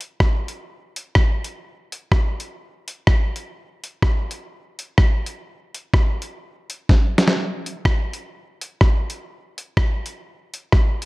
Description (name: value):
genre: ska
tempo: 126 BPM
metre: 4/4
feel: swing 60% on 8ths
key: none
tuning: none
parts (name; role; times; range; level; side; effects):
- dusty soul sampler-style drum kit; drums; 0.0-11.1 s; hi-hat, kick drum, rim click, snare drum; -17 LUFS; equal; none
room: light reverb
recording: dark, warm production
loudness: -18 LUFS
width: side -21 dB against mid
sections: 0.0-7.4 A section; 7.4-11.1 B section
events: drum fill 6.9-7.4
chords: none